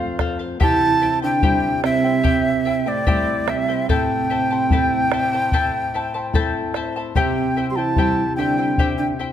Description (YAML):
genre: andean folk, Andean ensemble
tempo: 73 BPM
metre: 4/4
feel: straight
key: unclear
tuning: A4 = 439 Hz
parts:
  - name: breathy large quena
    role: melody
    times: 0.0-9.1 s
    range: D5 to C6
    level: -21 LUFS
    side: equal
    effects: none
  - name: soft octave-layered synth lead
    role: second line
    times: 0.0-9.1 s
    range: A3 to G4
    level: -22 LUFS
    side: right 4 dB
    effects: chorus, tremolo
  - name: charango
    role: accompaniment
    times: 0.0-9.3 s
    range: E4 to A5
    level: -26 LUFS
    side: left 4 dB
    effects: none
  - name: nylon-string guitar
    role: accompaniment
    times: 0.0-9.3 s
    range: F2 to F4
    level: -27 LUFS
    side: left 4 dB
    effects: none
  - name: bombo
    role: percussion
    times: 0.2-9.0 s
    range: none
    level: -23 LUFS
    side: left 1 dB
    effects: none
room: moderate scoring stage reverb, RT60 1.7 s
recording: close, detailed microphones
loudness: -17 LUFS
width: side -10 dB against mid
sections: 0.0-9.3 A section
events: none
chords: 0.0 F; 0.6 C; 3.9 Am; 7.2 C